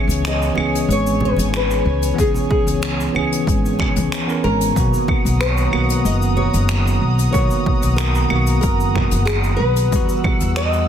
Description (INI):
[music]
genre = sunset chillout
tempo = 93 BPM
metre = 4/4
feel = straight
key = B major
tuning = A4 = 441 Hz
[part]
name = bell-like tine electric piano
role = accompaniment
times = 0.0-10.9 s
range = D#3 to A#4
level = -22 LUFS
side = right 1 dB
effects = auto-pan, ping-pong delay
[part]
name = airy breathy pad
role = sustained chords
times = 0.0-10.9 s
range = C#5 to E6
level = -28 LUFS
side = right 1 dB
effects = chorus
[part]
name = upright bass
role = bass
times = 0.1-10.8 s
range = F#1 to E2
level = -19 LUFS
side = equal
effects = none
[part]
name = jazz brush drum kit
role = drums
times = 0.1-10.9 s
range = cabasa, claves, finger snaps, hi-hat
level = -26 LUFS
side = right 1 dB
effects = soft clipping on snare
[part]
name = nylon-string guitar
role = melody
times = 0.3-10.9 s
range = G#4 to D#5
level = -23 LUFS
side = left 1 dB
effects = ping-pong delay
[part]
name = bongos and congas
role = percussion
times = 0.6-10.4 s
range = none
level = -29 LUFS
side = right 3 dB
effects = none
[part]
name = electronic kick drum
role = drums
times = 2.2-10.4 s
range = none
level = -20 LUFS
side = equal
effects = overdrive
[sound]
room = light reverb, small room ambience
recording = dense, heavily limited modern master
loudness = -15 LUFS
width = side -9 dB against mid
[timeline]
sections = 0.0-10.9 A section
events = none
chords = 0.0 C#m7; 4.8 Bmaj7; 9.9 Emadd9